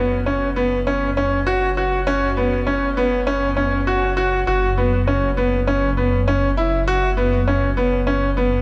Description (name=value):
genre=piano and strings electronica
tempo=100 BPM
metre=4/4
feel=straight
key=unclear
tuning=A4 = 441 Hz
part: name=bright upright piano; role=riff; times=0.0-8.6 s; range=B3 to F#4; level=-21 LUFS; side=equal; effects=digital delay
part: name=dark detuned saw bass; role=bass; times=0.0-8.6 s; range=F#1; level=-25 LUFS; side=equal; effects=none
room=moderate huge ambient reverb, RT60 3.9 s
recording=dark, warm production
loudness=-19 LUFS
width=mono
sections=0.0-4.5 A section; 4.5-8.6 B section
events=build-up 0.0-4.5; drop 4.5-8.6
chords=0.0 F#5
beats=0.27 0.87 1.47 | 2.07 2.67 3.27 3.87 | 4.47 5.07 5.67 6.27 | 6.87 7.47 8.07